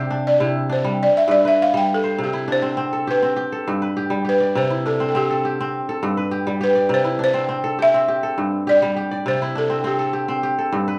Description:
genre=west african traditional, West African string and xylophone music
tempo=102 BPM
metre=4/4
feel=straight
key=C major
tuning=A4 = 442 Hz
part: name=balafon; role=melody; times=0.0-11.0 s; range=G4 to G5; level=-21 LUFS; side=equal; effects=slapback echo
part: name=kora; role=arpeggios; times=0.0-11.0 s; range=G2 to D5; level=-24 LUFS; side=equal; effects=none
room=moderate large studio reverb, RT60 1.4 s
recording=band playing live in one room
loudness=-20 LUFS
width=mono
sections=0.0-2.2 A section; 2.2-11.0 B section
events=balafon solo 0.0-2.2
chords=0.0 C; 1.0 G; 2.2 C; 3.4 G; 4.5 C; 5.7 G; 6.9 C; 8.1 G5; 9.3 C; 10.4 G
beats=0.41 1.00 1.59 | 2.18 2.77 3.37 3.96 | 4.55 5.14 5.73 6.32 | 6.91 7.50 8.09 8.68 | 9.27 9.86 10.45

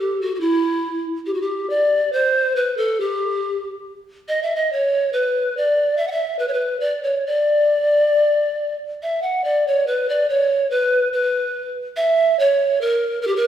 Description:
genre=musette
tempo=141 BPM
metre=3/4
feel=straight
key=D major, B harmonic minor from 9.4 s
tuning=A4 = 440 Hz
part: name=reedy polished pan flute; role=solo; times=0.0-13.5 s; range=E4 to F#5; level=-17 LUFS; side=equal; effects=none
room=wet recital hall reverb, RT60 1.3 s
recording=recorded in a church or concert hall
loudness=-17 LUFS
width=side -10 dB against mid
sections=0.0-9.4 A section; 9.4-13.5 B section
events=none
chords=none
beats=| 0.41 0.84 1.27 | 1.69 2.12 2.56 | 2.99 3.42 3.86 | 4.30 4.73 5.16 | 5.59 6.02 6.44 | 6.86 7.29 7.71 | 8.13 8.56 9.00 | 9.43 9.85 10.27 | 10.69 11.11 11.52 | 11.93 12.34 12.76 | 13.17

